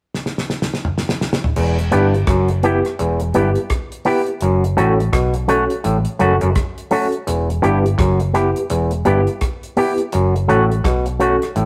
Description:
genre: roots reggae.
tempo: 84 BPM.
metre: 4/4.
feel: swing 61% on 16ths.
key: E dorian.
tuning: A4 = 440 Hz.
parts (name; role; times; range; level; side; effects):
damped 70s drum kit; drums; 0.1-11.7 s; crash cymbal, hi-hat, kick drum, rim click, snare drum, toms; -24 LUFS; equal; none.
auto-wah clav; riff; 1.6-11.7 s; E2 to B2; -23 LUFS; equal; overdrive.
vintage muted fingered electric bass; bass; 1.6-11.7 s; E1 to B1; -22 LUFS; equal; none.
electric guitar with an envelope filter; accompaniment; 1.9-11.4 s; A3 to G4; -22 LUFS; equal; none.
reed electric piano; stabs; 1.9-11.5 s; B3 to C#5; -22 LUFS; equal; fast tremolo.
room: moderate stone room reverb, RT60 1.1 s.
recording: rough rehearsal-room recording.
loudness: -18 LUFS.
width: mono.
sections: 0.0-1.6 A section; 1.6-11.7 B section.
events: drum fill 0.1-1.6.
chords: 0.0 N.C.; 1.6 Em; 4.4 F#m; 7.3 Em; 10.1 F#m.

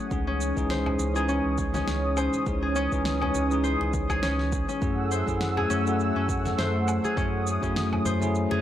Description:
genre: organic downtempo.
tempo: 102 BPM.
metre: 4/4.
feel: swing 56% on 16ths.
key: C# harmonic minor.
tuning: A4 = 440 Hz.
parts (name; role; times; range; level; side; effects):
bell-like tine electric piano; accompaniment; 0.0-8.6 s; E3 to G#4; -30 LUFS; left 2 dB; wide subtle chorus, sidechain pumping, analog delay.
warm analog pad; sustained chords; 0.0-8.6 s; A3 to E6; -30 LUFS; right 1 dB; chorus, sidechain pumping.
Celtic harp; arpeggios; 0.0-8.6 s; C#4 to B#4; -31 LUFS; left 2 dB; low-pass filter, analog delay.
warm sub bass; bass; 0.1-8.6 s; C#2 to F#2; -30 LUFS; right 1 dB; sidechain pumping.
electronic kick drum; drums; 0.1-7.7 s; none; -32 LUFS; equal; none.
electronic shaker, snare drum and woodblock; drums; 0.1-8.5 s; none; -34 LUFS; right 1 dB; none.
congas; percussion; 0.6-8.6 s; none; -39 LUFS; left 2 dB; none.
reverse cymbal; sound effects; 8.5-8.6 s; none; -42 LUFS; right 8 dB; none.
room: light reverb.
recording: dry, gritty hardware recording.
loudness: -24 LUFS.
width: side -11 dB against mid.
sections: 0.0-8.6 A section.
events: filter sweep on harp 0.0-8.6; reverse cymbal 8.5.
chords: 0.1 C#madd9; 4.8 F#m7.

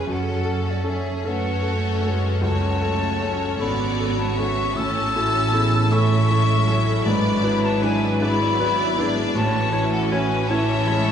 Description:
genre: classical, romantic movement for piano and orchestra.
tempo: 52 BPM (dotted quarters).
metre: 12/8.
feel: rubato.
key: F# minor.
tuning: A4 = 440 Hz.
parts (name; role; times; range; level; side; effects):
clear chamber violin section; melody; 0.0-11.1 s; F#4 to A5; -30 LUFS; left 4 dB; none.
clear grand piano; melody; 0.0-11.1 s; C#2 to C#5; -25 LUFS; equal; none.
clear symphonic violin section; second line; 0.0-11.1 s; B3 to E5; -32 LUFS; left 2 dB; none.
silver concert flute; second line; 0.0-11.1 s; D5 to E6; -26 LUFS; left 2 dB; none.
rich symphonic viola section; accompaniment; 0.0-11.1 s; E3 to E4; -28 LUFS; right 2 dB; none.
dark French horn section; sustained chords; 0.0-11.1 s; C#4 to B4; -30 LUFS; left 2 dB; none.
rich symphonic cello section; bass; 0.0-11.1 s; E#2 to A2; -27 LUFS; right 2 dB; none.
rich symphonic double bass section; bass; 0.0-11.1 s; E#1 to A1; -26 LUFS; right 2 dB; none.
room: wet concert hall reverb, RT60 2.1 s.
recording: recorded in a church or concert hall, nothing above 10.8 kHz.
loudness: -18 LUFS.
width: side -8 dB against mid.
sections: 0.0-11.1 A section.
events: none.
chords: 0.1 F#m; 4.8 A; 7.1 E7/G#; 9.4 A.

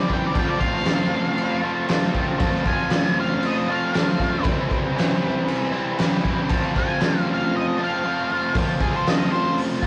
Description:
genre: garage rock duo or trio.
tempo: 117 BPM.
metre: 4/4.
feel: straight.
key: F major.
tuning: A4 = 440 Hz.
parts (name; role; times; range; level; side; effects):
octave-fuzz lead guitar; melody; 0.0-9.6 s; Ab4 to Ab5; -29 LUFS; equal; distortion.
overdriven electric guitar; riff; 0.0-9.9 s; C3 to F4; -26 LUFS; equal; spring reverb.
raw garage drum kit; drums; 0.1-9.9 s; crash cymbal, hi-hat, kick drum, snare drum; -25 LUFS; equal; none.
room: moderate stone room reverb, RT60 1.4 s.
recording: rough rehearsal-room recording, warm saturation, cassette tape.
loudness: -22 LUFS.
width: mono.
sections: 0.0-8.5 A section; 8.5-9.9 B section.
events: lead electric guitar solo 0.0-8.5.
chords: 0.4 F; 4.4 C; 6.5 F.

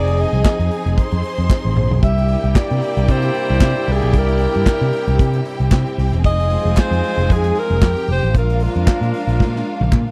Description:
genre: disco.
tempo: 114 BPM.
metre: 4/4.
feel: swing 56% on 16ths.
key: F dorian.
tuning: A4 = 440 Hz.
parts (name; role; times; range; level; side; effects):
breathy alto saxophone; melody; 0.0-9.1 s; F4 to E5; -24 LUFS; equal; none.
warm symphonic violin section; second line; 0.0-10.1 s; F4 to C6; -30 LUFS; equal; none.
clear studio string section; sustained chords; 0.0-10.1 s; C3 to Ab4; -29 LUFS; equal; none.
mellow horn section; stabs; 0.0-10.1 s; F3 to Eb5; -30 LUFS; equal; none.
picked electric bass; bass; 0.0-10.0 s; E1 to C3; -20 LUFS; equal; none.
modern studio drum kit; drums; 0.1-10.1 s; handclaps, hi-hat, kick drum, snare drum, toms; -18 LUFS; equal; none.
group handclap; percussion; 0.5-10.1 s; none; -34 LUFS; equal; none.
room: little or no reverb.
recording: dry, close 1970s-style studio recording.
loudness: -17 LUFS.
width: mono.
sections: 0.0-10.1 A section.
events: drum fill 1.5-2.0, 9.4-10.1.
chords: 0.0 Fm7; 2.0 C7; 6.2 Fm7; 8.3 Bb7.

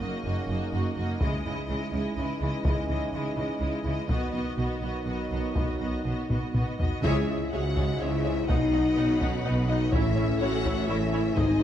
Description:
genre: cinematic, epic orchestral film score.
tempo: 125 BPM.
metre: 3/4.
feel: straight.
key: C# minor from 7.0 s.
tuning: A4 = 440 Hz.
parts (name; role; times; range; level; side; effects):
rich studio violin section; melody; 0.0-11.6 s; B4 to F#5; -38 LUFS; left 4 dB; none.
dark symphonic violin section; second line; 0.0-11.6 s; E4 to F#5; -38 LUFS; left 2 dB; none.
rich symphonic viola section; accompaniment; 0.0-11.6 s; G#3 to G#4; -36 LUFS; right 1 dB; none.
mellow French horn section; sustained chords; 0.0-11.6 s; B3 to F#4; -31 LUFS; left 3 dB; none.
warm trombone section; sustained chords; 0.0-11.6 s; G#2 to A#3; -38 LUFS; right 3 dB; none.
rich studio double bass section; bass; 0.0-11.6 s; F#1 to C#2; -33 LUFS; right 2 dB; none.
rich symphonic cello section; bass; 0.0-11.6 s; F#2 to C#3; -33 LUFS; right 2 dB; none.
solo taiko drums; drums; 1.2-11.6 s; none; -30 LUFS; equal; none.
warm symphonic string section; sustained chords; 7.0-11.6 s; C#4 to G#5; -35 LUFS; left 1 dB; none.
dark tuba; bass; 7.0-11.6 s; G#1 to C#2; -33 LUFS; right 3 dB; none.
timpani; percussion; 7.0-7.7, 11.4-11.6 s; G#2 to C#3; -34 LUFS; left 2 dB; none.
room: moderate scoring stage reverb, RT60 1.9 s.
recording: dark, warm production.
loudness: -25 LUFS.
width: side -10 dB against mid.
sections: 0.0-7.0 A section; 7.0-11.6 B section.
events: build-up 0.0-7.0; drum fill 6.3-7.0; band accent 7.0-7.5.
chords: 0.0 F#6; 1.2 C#madd9; 4.1 B; 7.0 C#m; 8.5 B; 9.9 A.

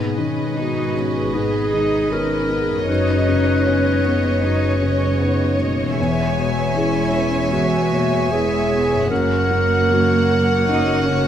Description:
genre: cinematic, emotional film score for orchestra.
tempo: 77 BPM.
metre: 4/4.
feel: rubato.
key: B major.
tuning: A4 = 440 Hz.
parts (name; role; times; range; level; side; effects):
warm symphonic violin section; second line; 0.0-11.3 s; B4 to G#5; -25 LUFS; left 3 dB; none.
dark symphonic viola section; accompaniment; 0.0-11.3 s; G#3 to C#5; -26 LUFS; right 3 dB; none.
felt-muted upright piano; accompaniment; 0.0-11.3 s; E2 to C#5; -22 LUFS; left 2 dB; none.
concert harp; arpeggios; 0.0-11.3 s; E2 to C#5; -29 LUFS; left 8 dB; none.
dark symphonic double bass section; bass; 0.0-11.3 s; E1 to G#1; -24 LUFS; right 3 dB; none.
warm chamber cello section; bass; 0.0-11.3 s; A#3 to D#4; -26 LUFS; right 3 dB; none.
mellow clarinet; second line; 0.6-11.3 s; E4 to B4; -22 LUFS; equal; none.
room: moderate scoring stage reverb, RT60 2.1 s.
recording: none.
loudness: -16 LUFS.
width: side -10 dB against mid.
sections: 0.0-11.3 A section.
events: none.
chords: 0.0 G#m7; 2.9 Badd9/F#; 6.0 E; 9.1 F#.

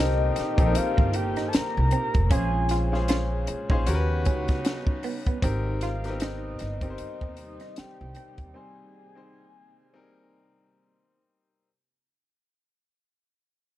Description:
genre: R&B, neo-soul.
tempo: 77 BPM.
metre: 4/4.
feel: swing 58% on 16ths.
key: Ab major.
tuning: A4 = 436 Hz.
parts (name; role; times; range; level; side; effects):
soft octave-layered synth lead; melody; 0.0-11.3 s; Eb5 to Bb5; -32 LUFS; left 2 dB; chorus, phaser.
electric guitar through a small old amp; second line; 0.0-8.3 s; B3 to F4; -34 LUFS; right 5 dB; tremolo.
clear baby grand piano; accompaniment; 0.0-11.7 s; G3 to C5; -32 LUFS; left 3 dB; none.
warm studio string section; sustained chords; 0.0-11.6 s; Bb2 to G4; -39 LUFS; right 1 dB; none.
mellow trombone section; stabs; 0.0-11.2 s; Db3 to G4; -38 LUFS; right 3 dB; none.
upright bass; bass; 0.0-8.5 s; F1 to Eb2; -26 LUFS; equal; none.
compact cocktail drum kit; drums; 0.4-8.5 s; hi-hat, kick drum, snare drum; -25 LUFS; equal; none.
room: studio reverb.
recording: dark, warm production.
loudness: -23 LUFS.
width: side -14 dB against mid.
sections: 0.0-11.7 A section.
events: fade-out 0.0-11.7; break 8.5-11.7.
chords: 0.0 Cm7; 2.3 Bbm9; 3.9 Eb7alt; 5.4 Abmaj7.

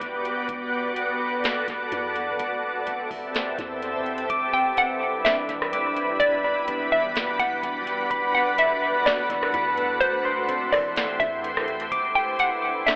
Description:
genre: hip hop, atmospheric cloud-rap.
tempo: 126 BPM.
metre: 4/4.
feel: half-time.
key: E minor.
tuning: A4 = 438 Hz.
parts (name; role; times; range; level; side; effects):
shimmering ambient pad; sustained chords; 0.0-13.0 s; G3 to E5; -26 LUFS; equal; chorus, built-in reverb, sidechain pumping.
soft 808-style bass; bass; 0.0-13.0 s; E1 to E2; -46 LUFS; equal; none.
booming analog drum machine; drums; 0.0-13.0 s; hi-hat, kick drum, rim click, snare drum; -29 LUFS; equal; overdrive, dub echo.
soft electric-piano-like synth keys; arpeggios; 4.3-13.0 s; E3 to D6; -28 LUFS; equal; chorus, dub echo.
hollow square pluck; melody; 4.5-13.0 s; C5 to G5; -23 LUFS; equal; chorus, dub echo.
room: moderate spring reverb, RT60 1.5 s, digital ambience.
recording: echo-heavy mix, telephone sound.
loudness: -21 LUFS.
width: side -34 dB against mid.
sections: 0.0-4.3 A section; 4.3-13.0 B section.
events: none.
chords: 0.5 Bm7/E; 2.4 Am7/E; 4.3 Em7; 6.2 Gmaj7/E; 8.1 Bm7/E; 10.0 Am7/E; 11.9 Em7.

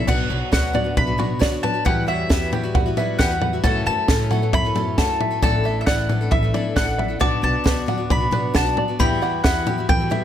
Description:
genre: indie folk with a building arrangement.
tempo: 134 BPM.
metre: 4/4.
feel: straight.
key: B minor.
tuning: A4 = 440 Hz.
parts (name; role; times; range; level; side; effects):
mandolin; melody; 0.0-10.2 s; E5 to B5; -24 LUFS; left 1 dB; none.
picked steel-string acoustic guitar; accompaniment; 0.0-10.2 s; F#2 to A4; -29 LUFS; left 5 dB; none.
open-back banjo; arpeggios; 0.0-10.2 s; F#4 to G5; -28 LUFS; right 9 dB; none.
upright bass; bass; 0.0-10.1 s; A1 to A2; -26 LUFS; equal; none.
clear upright piano; accompaniment; 0.1-10.2 s; F#1 to G5; -31 LUFS; left 4 dB; none.
warm brass ensemble; sustained chords; 0.1-10.2 s; F#3 to A4; -33 LUFS; right 1 dB; none.
compact cocktail drum kit; drums; 0.1-10.2 s; crash cymbal, kick drum, snare drum, toms; -21 LUFS; equal; none.
glockenspiel with hard plastic mallets; second line; 7.2-10.2 s; B5 to D6; -29 LUFS; left 4 dB; none.
room: little or no reverb.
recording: none.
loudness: -18 LUFS.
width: side -10 dB against mid.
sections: 0.1-10.2 A section.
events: none.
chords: 0.1 Bm; 1.9 Emadd9; 3.6 F#m7; 5.4 Asus4; 7.2 Bm; 9.0 Emadd9.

